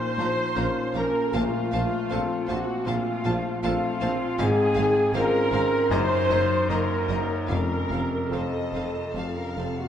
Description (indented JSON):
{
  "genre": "classical, romantic movement for piano and orchestra",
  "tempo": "71-80 BPM",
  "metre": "4/4",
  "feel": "rubato",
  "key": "unclear",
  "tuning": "A4 = 440 Hz",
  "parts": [
    { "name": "clear grand piano", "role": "melody", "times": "0.0-9.9 s", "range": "F2 to Eb5", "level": "-28 LUFS", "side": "left 2 dB", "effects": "none" },
    { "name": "dark clarinet", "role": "second line", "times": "0.0-9.9 s", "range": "A3 to Eb4", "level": "-34 LUFS", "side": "left 1 dB", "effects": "none" },
    { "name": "flute section", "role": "second line", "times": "0.0-9.9 s", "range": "F5 to C6", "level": "-34 LUFS", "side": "left 1 dB", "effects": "none" },
    { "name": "rich chamber viola section", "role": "accompaniment", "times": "0.0-9.9 s", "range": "F4 to C5", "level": "-31 LUFS", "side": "right 2 dB", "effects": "none" },
    { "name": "clear French horn section", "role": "sustained chords", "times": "0.0-9.9 s", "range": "F4 to C5", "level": "-28 LUFS", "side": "left 1 dB", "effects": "none" },
    { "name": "rich chamber violin section", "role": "melody", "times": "0.2-9.9 s", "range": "Eb5 to Bb5", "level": "-40 LUFS", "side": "left 2 dB", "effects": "none" },
    { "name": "rich chamber violin section", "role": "second line", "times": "0.2-9.7 s", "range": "C5 to F5", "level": "-40 LUFS", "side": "left 1 dB", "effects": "none" },
    { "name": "mellow tuba", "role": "bass", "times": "0.2-9.7 s", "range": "F1 to Bb1", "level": "-36 LUFS", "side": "right 4 dB", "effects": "none" },
    { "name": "rich chamber double bass section", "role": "bass", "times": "0.2-9.7 s", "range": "F1 to Bb1", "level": "-36 LUFS", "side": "right 4 dB", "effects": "none" },
    { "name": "rich symphonic cello section", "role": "bass", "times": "0.2-9.6 s", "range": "F2 to Bb2", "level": "-36 LUFS", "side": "right 3 dB", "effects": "none" },
    { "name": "timpani", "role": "percussion", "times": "1.3-2.4, 7.5-8.7 s", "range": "F2 to Bb2", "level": "-36 LUFS", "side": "left 1 dB", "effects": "none" }
  ],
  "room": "wet concert hall reverb, RT60 2.1 s",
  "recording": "dark, warm production",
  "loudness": "-22 LUFS",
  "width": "side -9 dB against mid",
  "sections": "0.0-9.9 A section",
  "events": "none",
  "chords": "0.0 Bbm; 1.3 F/Bb; 4.4 Fm/Ab; 5.9 Ebm/Gb; 7.5 F",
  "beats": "0.56 | 1.33 2.10 2.86 3.63 | 4.38 5.14 5.91 6.69 | 7.49 8.31 9.15"
}